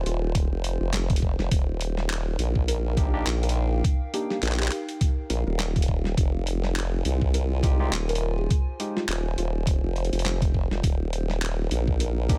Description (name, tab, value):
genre	glitch hop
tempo	103 BPM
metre	4/4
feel	swing 57% on 16ths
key	F minor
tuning	A4 = 440 Hz
part	formant-sweep wobble bass	bass	0.0-12.4 s	Eb1 to C2	-28 LUFS	equal	chorus, tube saturation
part	warbly tape-like pad	texture	0.0-12.4 s	Eb4 to Ab5	-40 LUFS	equal	chorus, built-in reverb, sidechain pumping
part	woody wave-folded pluck	melody	0.1-12.2 s	F4 to Bb4	-38 LUFS	equal	chorus, cassette tape, dub echo
part	boom bap sampler-style drum kit	drums	0.1-12.4 s	handclaps, hi-hat, snare drum	-34 LUFS	equal	none
part	electronic kick drum	drums	0.3-12.4 s	none	-26 LUFS	equal	none
part	overdriven tine electric piano	stabs	3.0-12.4 s	Ab3 to G4	-36 LUFS	equal	sidechain pumping
room	little or no reverb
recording	none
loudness	-26 LUFS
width	mono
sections	0.0-12.4 A section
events	none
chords	0.0 Fm7; 1.5 Eb; 6.2 Fm7; 10.8 Eb5